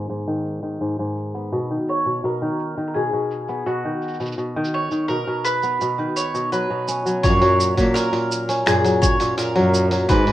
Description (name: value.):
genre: folktronica.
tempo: 84 BPM.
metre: 4/4.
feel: straight.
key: B major.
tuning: A4 = 440 Hz.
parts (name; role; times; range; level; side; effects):
kora; arpeggios; 0.0-10.3 s; G#2 to C#4; -22 LUFS; equal; vintage 12-bit sampler grit, low-pass filter.
lo-fi sampler-style drum kit; drums; 0.1-10.3 s; cabasa, finger snaps, hi-hat; -28 LUFS; right 1 dB; none.
mandolin; melody; 1.9-10.3 s; F#4 to C#5; -23 LUFS; right 1 dB; vintage 12-bit sampler grit, digital delay.
rich cello; bass; 7.2-10.3 s; F#2 to A#2; -23 LUFS; equal; tube saturation.
electronic kick drum; drums; 7.2-10.2 s; none; -20 LUFS; equal; none.
room: moderate studio reverb, RT60 0.6 s.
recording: rough home demo mix, low-pass filter.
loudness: -19 LUFS.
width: side -14 dB against mid.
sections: 0.0-7.2 A section; 7.2-10.3 B section.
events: filter sweep on kora 0.0-7.2; filter sweep 0.0-7.2.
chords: 0.0 G#m; 1.5 B; 7.2 F#.